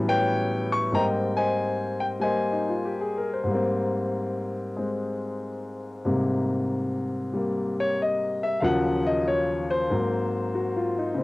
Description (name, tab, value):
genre	solo jazz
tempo	93 BPM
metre	4/4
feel	swing 68% on 8ths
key	Ab major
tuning	A4 = 440 Hz
part	warm baby grand piano	solo	0.0-11.2 s	Eb2 to C#6	-24 LUFS	left 1 dB	cassette tape
room	wet small room reverb, RT60 0.5 s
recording	home recording on cassette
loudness	-24 LUFS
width	side -20 dB against mid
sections	0.0-6.1 A section; 6.1-11.2 B section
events	grand piano solo 6.1-11.2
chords	0.0 A13; 0.9 Abmaj9; 8.6 Ebm9; 9.9 Ab9